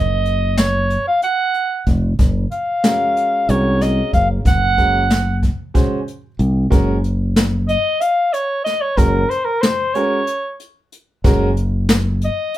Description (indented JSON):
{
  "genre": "progressive instrumental, band music in an uneven meter",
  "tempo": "186 BPM (eighths)",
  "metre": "7/8",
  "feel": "straight",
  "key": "Gb lydian",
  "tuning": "A4 = 440 Hz",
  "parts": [
    { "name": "mellow soprano saxophone", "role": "melody", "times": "0.0-12.6 s", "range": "Bb4 to Gb5", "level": "-17 LUFS", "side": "equal", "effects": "none" },
    { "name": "modern bright fingered electric bass", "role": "bass", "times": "0.0-12.3 s", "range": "F1 to C2", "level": "-18 LUFS", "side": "equal", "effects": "none" },
    { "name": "jazz brush drum kit", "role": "drums", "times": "0.3-12.6 s", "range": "hi-hat, kick drum, snare drum", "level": "-17 LUFS", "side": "equal", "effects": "none" },
    { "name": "clear concert grand piano", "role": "accompaniment", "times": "2.8-11.5 s", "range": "Ab3 to C5", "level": "-21 LUFS", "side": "right 2 dB", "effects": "none" }
  ],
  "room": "moderate studio ambience, RT60 0.5 s",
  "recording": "band playing live in one room",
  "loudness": "-15 LUFS",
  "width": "side -14 dB against mid",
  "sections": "0.0-6.7 A section; 6.7-12.6 B section",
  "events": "soprano saxophone solo 6.7-12.6",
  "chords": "0.0 Gb5; 2.2 Gbmaj9#11; 6.7 Gb"
}